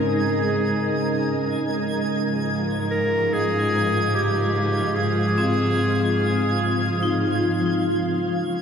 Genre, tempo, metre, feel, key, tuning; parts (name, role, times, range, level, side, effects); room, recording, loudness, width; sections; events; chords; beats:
ambient; 74 BPM; 4/4; straight; A4 = 440 Hz
shimmering ambient pad; sustained chords; 0.0-8.6 s; Db3 to Bb4; -25 LUFS; right 1 dB; chorus, built-in reverb
vibraphone with hard mallets; arpeggios; 0.0-8.6 s; C4 to Bb4; -28 LUFS; left 3 dB; ping-pong delay
rich studio cello section; bass; 0.0-8.2 s; Ab2; -27 LUFS; equal
analog drone; drone; 0.0-8.3 s; Db3 to Ab3; -29 LUFS; right 1 dB; chorus
twinkling granular texture; texture; 0.0-8.6 s; Db6 to Ab6; -32 LUFS; right 1 dB; built-in reverb
clear clarinet; melody; 0.1-7.4 s; G4 to Bb4; -26 LUFS; equal; ping-pong delay
wet huge ambient reverb, RT60 7.0 s; dark, warm production; -20 LUFS; side -7 dB against mid
0.0-8.2 A section
0.0 Fm7/Ab
0.06 0.87 | 1.68 2.50 3.31 4.12 | 4.93 5.75 6.57 7.40 | 8.23